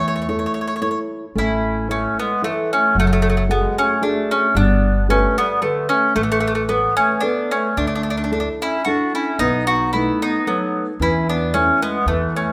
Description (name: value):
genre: italian folk, Italian serenade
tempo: 112 BPM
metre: 3/4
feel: swing 53% on 8ths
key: A major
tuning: A4 = 439 Hz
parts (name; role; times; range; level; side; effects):
- mandolin; melody; 0.0-12.5 s; A3 to C#5; -22 LUFS; equal; none
- warm clarinet; second line; 0.0-12.5 s; D3 to D#4; -28 LUFS; equal; none
- nylon-string guitar; accompaniment; 0.0-12.5 s; B2 to C#5; -25 LUFS; equal; none
- upright bass; bass; 0.0-12.4 s; F#1 to E2; -25 LUFS; equal; none
room: moderate scoring stage reverb, RT60 1.6 s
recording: none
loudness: -19 LUFS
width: mono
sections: 0.0-1.4 A section; 1.4-12.5 B section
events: none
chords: 0.0 A; 3.0 F#madd9; 4.6 Gadd9; 6.2 Aadd9; 7.8 Dsus2; 9.4 B7; 11.0 A/E